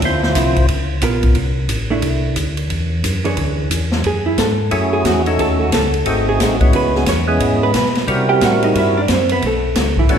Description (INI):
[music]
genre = soul jazz organ trio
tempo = 178 BPM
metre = 4/4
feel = swing 63% on 8ths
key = F# minor from 4.0 s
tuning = A4 = 440 Hz
[part]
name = mellow tonewheel organ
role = bass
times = 0.0-10.2 s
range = G#1 to C3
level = -20 LUFS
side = equal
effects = chorus vibrato, slow rotary speaker
[part]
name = open jazz drum kit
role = drums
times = 0.0-10.2 s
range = hi-hat, kick drum, ride cymbal, snare drum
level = -19 LUFS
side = equal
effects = none
[part]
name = percussive tonewheel organ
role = melody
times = 0.1-0.7, 4.7-10.2 s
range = G3 to C5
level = -18 LUFS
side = equal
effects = slow rotary speaker, overdrive
[part]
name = vintage hollow-body jazz guitar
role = accompaniment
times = 0.4-10.2 s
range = D3 to G5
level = -20 LUFS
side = right 2 dB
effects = none
[sound]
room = moderate concert hall reverb, RT60 1.8 s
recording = recorded in a church or concert hall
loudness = -14 LUFS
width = side -8 dB against mid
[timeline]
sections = 0.0-4.0 A section; 4.0-10.2 B section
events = hollow-body jazz guitar solo 4.0-10.2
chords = 0.0 Dm9; 0.7 C#6; 1.4 C69; 2.7 E13; 4.0 F#m9; 5.4 D#m7b5; 6.1 G#7b9; 6.7 C#m7; 8.1 C7#11; 9.4 Bm9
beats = | 0.02 0.35 0.69 1.03 | 1.36 1.70 2.03 2.37 | 2.70 3.04 3.38 3.71 | 4.05 4.38 4.72 5.05 | 5.39 5.73 6.06 6.40 | 6.74 7.07 7.41 7.75 | 8.08 8.42 8.76 9.09 | 9.43 9.76 10.10